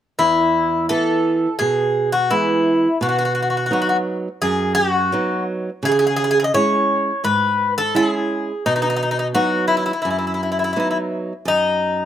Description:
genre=greek folk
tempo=85 BPM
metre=4/4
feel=straight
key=E major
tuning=A4 = 440 Hz
part: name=Greek bouzouki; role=melody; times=0.2-12.1 s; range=D#4 to D#5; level=-18 LUFS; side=left 2 dB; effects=slapback echo
part: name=flamenco guitar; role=accompaniment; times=0.2-12.1 s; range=E2 to E4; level=-21 LUFS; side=right 3 dB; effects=slapback echo
room=little or no reverb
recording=recorded outdoors, with no room sound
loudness=-16 LUFS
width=side -10 dB against mid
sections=0.2-12.1 A section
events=none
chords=0.2 E; 3.0 B; 5.8 C#m; 8.6 B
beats=| 0.19 0.89 1.60 2.30 | 3.01 3.71 4.42 5.12 | 5.83 6.53 7.23 7.94 | 8.64 9.34 10.05 10.75 | 11.45

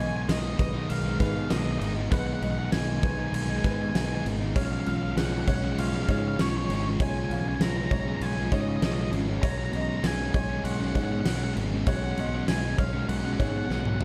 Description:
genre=post-rock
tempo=98 BPM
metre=4/4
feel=straight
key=unclear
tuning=A4 = 440 Hz
part: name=octave-fuzz lead guitar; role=melody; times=0.0-14.0 s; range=C#5 to A#5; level=-38 LUFS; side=equal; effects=distortion, slapback echo
part: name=felt-muted upright piano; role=arpeggios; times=0.0-14.0 s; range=B4 to E#6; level=-41 LUFS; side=equal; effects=slapback echo
part: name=raw garage guitar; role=riff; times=0.0-14.0 s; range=B2 to D#4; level=-36 LUFS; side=equal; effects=overdrive
part: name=thick fuzz guitar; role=riff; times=0.0-14.0 s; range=B2 to D#4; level=-36 LUFS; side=equal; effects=distortion
part: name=growling fingered electric bass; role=bass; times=0.0-14.0 s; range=G#1 to G#2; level=-33 LUFS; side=equal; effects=overdrive
part: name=huge arena drum kit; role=drums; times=0.3-14.0 s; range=crash cymbal, kick drum, snare drum, toms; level=-32 LUFS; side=equal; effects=none
room=light reverb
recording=dark, warm production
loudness=-27 LUFS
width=mono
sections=0.0-14.0 A section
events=drum fill 13.7-14.0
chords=0.0 G#m; 4.6 C#; 9.4 F#sus2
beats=0.29 0.90 1.51 | 2.12 2.73 3.34 3.95 | 4.56 5.17 5.78 6.39 | 7.00 7.61 8.22 8.82 | 9.43 10.04 10.65 11.26 | 11.87 12.48 13.09 13.70

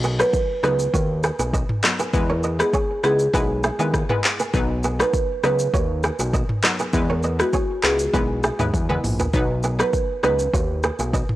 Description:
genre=afrobeats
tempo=100 BPM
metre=4/4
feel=straight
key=B major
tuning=A4 = 440 Hz
part: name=kora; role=riff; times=0.0-11.3 s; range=E4 to D#5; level=-28 LUFS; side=right 3 dB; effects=tape echo
part: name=fat analog bass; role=bass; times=0.0-11.2 s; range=A#1 to E2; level=-24 LUFS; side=equal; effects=none
part: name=afro-pop drum kit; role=drums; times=0.0-11.4 s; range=handclaps, hi-hat, kick drum, rim click, shaker, toms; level=-22 LUFS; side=equal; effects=none
part: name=marimba with medium mallets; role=melody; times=0.2-10.4 s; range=F#4 to B4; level=-24 LUFS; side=right 2 dB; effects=none
part: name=analog pluck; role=accompaniment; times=0.2-10.5 s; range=F#3 to B4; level=-27 LUFS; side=left 2 dB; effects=chorus
room=light reverb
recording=dry, gritty hardware recording, transformer saturation, cassette tape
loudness=-18 LUFS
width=side -15 dB against mid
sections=0.0-11.4 A section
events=drum fill 8.7-9.3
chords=0.0 B; 2.1 E; 4.5 B; 6.9 E; 9.3 B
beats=0.34 0.94 1.53 | 2.13 2.73 3.33 3.94 | 4.54 5.13 5.74 6.33 | 6.93 7.54 8.13 8.73 | 9.34 9.94 10.54 11.13

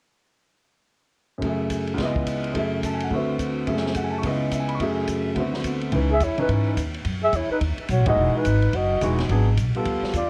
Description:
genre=jazz, small-group swing and bop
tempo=213 BPM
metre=4/4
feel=swing 62% on 8ths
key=C# minor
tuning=A4 = 439 Hz
part: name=warm grand piano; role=accompaniment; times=1.4-10.1 s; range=C#2 to C#6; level=-27 LUFS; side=equal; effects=plate reverb
part: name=open jazz drum kit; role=drums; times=1.4-10.2 s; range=hi-hat, kick drum, ride cymbal, snare drum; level=-34 LUFS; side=equal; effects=none
part: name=upright bass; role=bass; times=5.9-10.3 s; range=E1 to G#2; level=-25 LUFS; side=equal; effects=none
part: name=breathy clarinet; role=melody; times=6.1-10.3 s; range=B4 to E5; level=-28 LUFS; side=equal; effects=plate reverb, analog delay
part: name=breathy trumpet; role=second line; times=6.1-10.3 s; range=D#4 to G#4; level=-31 LUFS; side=equal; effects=plate reverb, analog delay
room=light reverb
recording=worn, warbling old tape, cassette tape, warbly pitch drift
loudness=-23 LUFS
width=mono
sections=1.4-5.9 A section; 5.9-10.3 B section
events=band accent 8.0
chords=1.4 F#m9; 2.0 C#m7; 2.5 F#m9; 3.1 D13; 3.7 F#m9; 4.2 C#m7; 4.8 F#m9; 5.4 D13; 5.9 C#m9; 7.1 E69; 7.6 B6; 8.2 Emaj9; 9.3 G#m7b5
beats=| 1.42 1.70 1.98 2.27 | 2.55 2.83 3.11 3.39 | 3.67 3.96 4.24 4.52 | 4.80 5.08 5.36 5.64 | 5.93 6.21 6.49 6.77 | 7.05 7.33 7.61 7.89 | 8.18 8.46 8.74 9.02 | 9.30 9.58 9.86 10.14

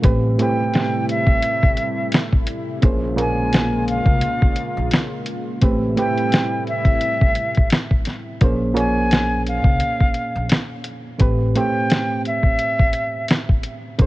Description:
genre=lo-fi hip hop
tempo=86 BPM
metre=4/4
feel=swing 56% on 16ths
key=unclear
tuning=A4 = 445 Hz
part: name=reed electric piano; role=accompaniment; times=0.0-14.1 s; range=A2 to Db5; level=-24 LUFS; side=right 2 dB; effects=low-pass filter
part: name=lush unison pad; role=sustained chords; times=0.0-8.4, 14.0-14.1 s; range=C3 to F4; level=-28 LUFS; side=left 1 dB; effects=chorus, low-pass filter
part: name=upright bass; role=bass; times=0.0-14.1 s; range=A1 to C2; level=-22 LUFS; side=equal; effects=none
part: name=lo-fi sampler-style drum kit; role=drums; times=0.0-14.1 s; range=hi-hat, kick drum, snare drum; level=-17 LUFS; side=equal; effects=none
part: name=breathy bright silver concert flute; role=melody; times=0.4-13.3 s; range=E5 to Ab5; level=-23 LUFS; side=equal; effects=low-pass filter, analog delay
room=little or no reverb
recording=cassette tape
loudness=-16 LUFS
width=side -18 dB against mid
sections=0.0-14.1 A section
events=none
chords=0.0 Am7; 2.8 Bbm7; 5.6 Am7; 8.4 Bbm7; 11.2 Am7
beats=| 0.04 0.74 1.44 2.13 | 2.83 3.53 4.23 4.92 | 5.62 6.32 7.02 7.71 | 8.41 9.11 9.81 10.51 | 11.20 11.90 12.60 13.29 | 13.99

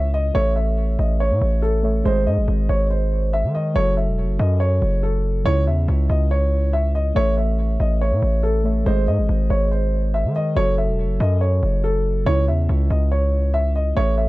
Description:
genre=hip hop, drill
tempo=141 BPM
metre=4/4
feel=half-time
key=C# harmonic minor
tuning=A4 = 440 Hz
part: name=dark concert grand piano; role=melody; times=0.0-14.3 s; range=A4 to E5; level=-24 LUFS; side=equal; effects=tape echo
part: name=muted felt-like synth keys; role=accompaniment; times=0.0-14.3 s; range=C#3 to E5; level=-26 LUFS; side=equal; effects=chorus
part: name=distorted 808-style bass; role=bass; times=0.0-14.3 s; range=E1 to D#3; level=-19 LUFS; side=equal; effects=distortion
room=little or no reverb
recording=dark, warm production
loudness=-17 LUFS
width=side -19 dB against mid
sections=0.0-14.3 A section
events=none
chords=0.4 A; 2.1 G#; 3.8 F#m; 5.5 C#m; 7.2 A; 8.9 G#; 10.6 F#m; 12.3 C#m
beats=| 0.35 0.78 1.20 1.63 | 2.05 2.48 2.90 3.33 | 3.76 4.18 4.61 5.03 | 5.46 5.88 6.31 6.74 | 7.16 7.59 8.01 8.44 | 8.86 9.29 9.71 10.14 | 10.56 10.99 11.42 11.84 | 12.27 12.69 13.12 13.54 | 13.97

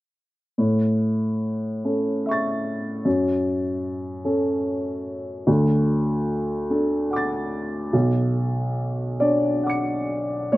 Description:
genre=neoclassical minimalist piano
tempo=44-50 BPM (dotted quarters)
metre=6/8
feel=rubato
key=A major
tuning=A4 = 439 Hz
part: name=dark upright piano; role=solo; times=0.6-10.6 s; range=B1 to C#7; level=-21 LUFS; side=equal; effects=slapback echo
room=light reverb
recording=recorded outdoors, with no room sound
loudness=-21 LUFS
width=side -17 dB against mid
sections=0.6-10.5 A section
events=none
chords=0.6 A; 3.1 F#m; 5.5 D; 7.9 Bmadd9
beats=| 0.58 1.84 | 3.05 4.25 | 5.47 6.69 | 7.93 9.21 | 10.54

